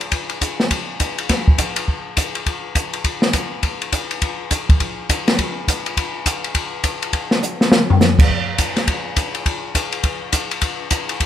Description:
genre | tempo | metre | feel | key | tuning
jazz | 206 BPM | 4/4 | swing 63% on 8ths | none | none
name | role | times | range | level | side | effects
open jazz drum kit | drums | 0.0-11.3 s | crash cymbal, hi-hat, kick drum, ride cymbal, snare drum, toms | -17 LUFS | left 1 dB | none
room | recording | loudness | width
light reverb | none | -17 LUFS | side -10 dB against mid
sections
0.0-8.3 A section; 8.3-11.3 B section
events
drum fill 7.4-8.0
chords
none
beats
| 0.12 0.41 0.70 1.00 | 1.29 1.58 1.88 2.17 | 2.46 2.75 3.04 3.34 | 3.63 3.92 4.21 4.50 | 4.80 5.09 5.38 5.67 | 5.96 6.25 6.54 6.83 | 7.12 7.42 7.71 8.00 | 8.29 8.58 8.87 9.16 | 9.45 9.74 10.03 10.32 | 10.61 10.90 11.20

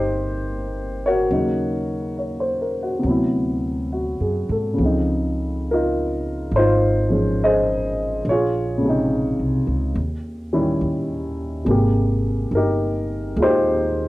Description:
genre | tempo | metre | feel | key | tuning
jazz ballad | 70 BPM | 4/4 | swing 66% on 8ths | Ab major | A4 = 442 Hz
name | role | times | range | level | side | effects
warm baby grand piano | accompaniment | 0.0-14.1 s | C3 to Eb5 | -20 LUFS | equal | cassette tape
upright bass | bass | 0.0-14.1 s | G1 to Ab2 | -24 LUFS | equal | none
room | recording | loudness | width
moderate studio reverb, RT60 0.6 s | home recording on cassette | -19 LUFS | side -18 dB against mid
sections
0.0-14.1 A section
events
none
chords
0.0 Cm7; 1.3 Ebm7; 3.0 D13; 4.8 Dbmaj9; 8.2 Bbm11; 10.0 Eb7b9; 11.7 Abmaj9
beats
0.43 | 1.30 2.16 3.03 3.91 | 4.78 5.66 6.52 7.39 | 8.25 9.11 9.96 10.81 | 11.66 12.52 13.37

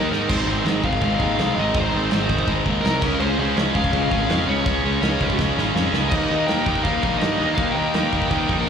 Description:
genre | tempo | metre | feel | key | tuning
punk rock | 164 BPM | 4/4 | straight | unclear | A4 = 440 Hz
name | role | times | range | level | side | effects
high-gain lead guitar | melody | 0.0-8.7 s | Bb4 to G5 | -26 LUFS | equal | distortion
cranked stack guitar | riff | 0.0-8.7 s | Ab2 to G4 | -24 LUFS | left 13 dB | overdrive, slapback echo
cranked stack guitar | riff | 0.0-8.7 s | Ab2 to Eb4 | -24 LUFS | right 13 dB | overdrive, slapback echo
fuzz picked electric bass | bass | 0.0-8.6 s | Ab1 to Ab2 | -24 LUFS | equal | overdrive
loose indie drum kit | drums | 0.1-8.6 s | crash cymbal, kick drum, snare drum | -26 LUFS | equal | none
room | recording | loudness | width
light reverb | live gig heard through the venue's PA, club reverb | -18 LUFS | side -7 dB against mid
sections
0.3-8.7 A section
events
drum fill 0.1, 5.4-6.1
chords
0.3 Ab; 3.0 Db; 6.1 Eb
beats
| 0.29 0.66 1.02 1.38 | 1.75 2.11 2.48 2.84 | 3.20 3.57 3.93 4.30 | 4.66 5.03 5.39 5.76 | 6.12 6.49 6.85 7.22 | 7.58 7.95 8.31 8.68

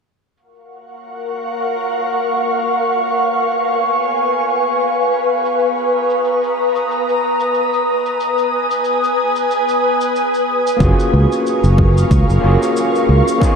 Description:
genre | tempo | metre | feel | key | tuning
sunset chillout | 92 BPM | 4/4 | swing 55% on 16ths | F# major | A4 = 439 Hz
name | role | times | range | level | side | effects
ethereal airy pad | sustained chords | 1.0-13.6 s | A#4 to D#6 | -15 LUFS | equal | ensemble chorus, built-in reverb, shimmer reverb
cabasa | drums | 0.4-13.6 s | none | -37 LUFS | equal | low-pass filter on perc, low-pass filter on room
overdriven tine electric piano | accompaniment | 10.8-13.6 s | A#3 to G#4 | -17 LUFS | equal | auto-pan, vintage 12-bit sampler grit, tape echo, shimmer reverb
fingered electric bass | bass | 10.8-13.2 s | F#1 to C#2 | -12 LUFS | equal | none
electronic kick drum | drums | 10.8-13.6 s | none | -15 LUFS | equal | overdrive
room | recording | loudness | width
wet huge ambient reverb, RT60 8.3 s | dreamy mix soaked in reverb | -14 LUFS | side -5 dB against mid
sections
0.4-13.6 A section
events
none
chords
0.4 F#maj7; 3.0 C#7; 5.6 Bmaj7; 7.9 G#m; 10.8 F#maj7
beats
| 0.37 1.02 1.68 2.33 | 2.98 3.63 4.28 4.94 | 5.59 6.24 6.89 7.54 | 8.20 8.85 9.50 10.15 | 10.81 11.46 12.11 12.76 | 13.41

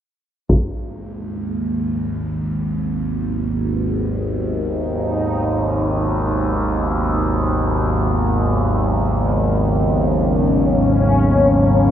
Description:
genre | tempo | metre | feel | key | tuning
dark ambient drone | free time | none | none | G# minor | A4 = 440 Hz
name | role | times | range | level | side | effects
sweeping resonant pad | sustained chords | 0.5-11.9 s | G#2 to D#4 | -21 LUFS | left 1 dB | chorus, shimmer reverb
overtone-sweeping drone | drone | 0.9-11.9 s | G#1 to D#2 | -18 LUFS | equal | chorus, built-in reverb
taiko ensemble | percussion | 0.5-0.7 s | none | -19 LUFS | equal | low-pass filter on perc
room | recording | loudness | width
moderate huge ambient reverb, RT60 8.5 s | none | -16 LUFS | side -10 dB against mid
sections
0.5-11.9 A section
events
fade-in on analog synth pad 0.5-11.9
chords
0.5 G#m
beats
free time

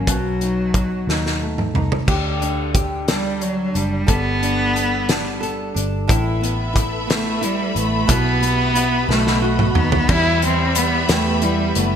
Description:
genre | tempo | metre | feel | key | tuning
six-eight pop ballad | 60 BPM (dotted quarters) | 6/8 | straight | E minor | A4 = 441 Hz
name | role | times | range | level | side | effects
rich cello | melody | 0.0-11.9 s | F#3 to E4 | -21 LUFS | right 1 dB | none
nylon-string guitar | accompaniment | 0.0-12.0 s | E2 to A4 | -24 LUFS | left 1 dB | double-tracked left and right
vintage muted fingered electric bass | bass | 0.0-12.0 s | F#1 to E2 | -24 LUFS | equal | none
loose indie drum kit | drums | 0.1-11.9 s | crash cymbal, hi-hat, kick drum, snare drum, toms | -21 LUFS | equal | none
warm studio string section | sustained chords | 6.1-12.0 s | F#4 to B5 | -24 LUFS | left 2 dB | none
fingerpicked steel-string acoustic guitar | arpeggios | 10.1-12.0 s | E2 to E4 | -25 LUFS | right 2 dB | analog chorus
room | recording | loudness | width
moderate lush hall reverb, RT60 1.7 s | bright 1980s-style digital production | -16 LUFS | side -8 dB against mid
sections
0.0-2.1 A section; 2.1-10.1 B section; 10.1-12.0 C section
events
drum fill 1.1-2.1, 9.1-10.1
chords
0.1 B7; 2.1 Dsus4; 4.1 Gadd9; 6.1 Asus2; 8.1 Em/B; 9.1 B; 10.1 Em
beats
| 0.07 1.08 | 2.08 3.08 | 4.09 5.09 | 6.09 7.09 | 8.09 9.09 | 10.09 11.09

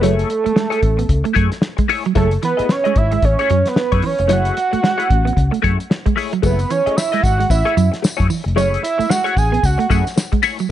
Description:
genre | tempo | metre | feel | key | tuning
funk | 112 BPM | 4/4 | swing 60% on 16ths | unclear | A4 = 440 Hz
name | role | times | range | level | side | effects
fat analog lead | melody | 0.0-10.1 s | A4 to G#5 | -19 LUFS | right 3 dB | slapback echo
clean electric guitar | accompaniment | 0.0-10.6 s | A3 to D#5 | -21 LUFS | left 8 dB | wah, analog chorus
clean electric guitar | riff | 0.0-10.7 s | E3 to B3 | -22 LUFS | right 9 dB | none
vintage muted fingered electric bass | bass | 0.0-10.0 s | E#1 to F#2 | -18 LUFS | left 1 dB | none
cloth-damped thuddy drum kit | drums | 0.0-10.7 s | hi-hat, kick drum, snare drum | -19 LUFS | left 1 dB | none
tambourine | percussion | 6.4-10.7 s | none | -32 LUFS | left 3 dB | none
room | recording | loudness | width
studio reverb | nothing above 10.7 kHz | -14 LUFS | side -12 dB against mid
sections
0.0-10.7 A section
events
none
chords
0.0 F#m9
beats
| 0.03 0.56 1.10 1.63 | 2.17 2.70 3.23 3.77 | 4.30 4.83 5.37 5.90 | 6.43 6.97 7.50 8.03 | 8.57 9.10 9.63 10.17

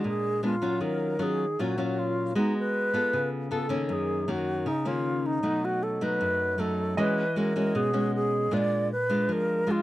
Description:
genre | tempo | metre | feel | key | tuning
bossa nova | 156 BPM | 4/4 | straight | Eb minor | A4 = 439 Hz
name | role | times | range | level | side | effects
alto flute | melody | 0.0-9.8 s | Eb4 to D5 | -28 LUFS | right 1 dB | none
nylon-string guitar | accompaniment | 0.0-9.8 s | Gb2 to A4 | -28 LUFS | left 1 dB | none
clear baby grand piano | accompaniment | 7.0-8.5 s | Eb5 | -35 LUFS | right 4 dB | none
room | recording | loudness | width
light reverb | dry, close 1970s-style studio recording | -25 LUFS | side -15 dB against mid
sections
0.8-9.8 A section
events
none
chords
0.0 Bb7b9; 0.8 Ebm9; 2.4 Abm7; 3.1 Dbaug7; 3.9 Gb6; 5.4 B7; 7.0 E69; 8.5 Bb7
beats
0.04 0.43 | 0.81 1.20 1.58 1.97 | 2.35 2.74 3.12 3.51 | 3.89 4.28 4.66 5.05 | 5.43 5.82 6.21 6.59 | 6.97 7.36 7.75 8.13 | 8.51 8.90 9.28 9.67

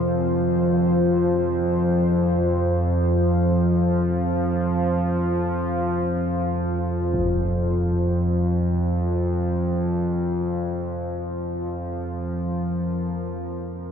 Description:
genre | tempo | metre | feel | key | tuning
dark ambient drone | free time | none | none | unclear | A4 = 441 Hz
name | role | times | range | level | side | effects
dark analog pad | sustained chords | 0.0-13.9 s | C4 to C5 | -28 LUFS | right 1 dB | chorus
gamelan-type bronze metallophone | arpeggios | 0.0-5.5 s | C3 to Bb4 | -36 LUFS | right 4 dB | none
analog drone | drone | 0.0-13.9 s | F2 to F3 | -21 LUFS | equal | chorus
impact | percussion | 7.1-7.3 s | none | -32 LUFS | left 1 dB | low-pass filter on sfx
room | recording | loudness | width
moderate huge ambient reverb, RT60 7.8 s | none | -20 LUFS | side -7 dB against mid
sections
0.0-13.9 A section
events
fade-in on impacts and reversed cymbals 0.0-13.9; fade-out on analog synth pad 0.0-13.9; fade-out 12.8-13.9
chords
0.0 F5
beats
free time

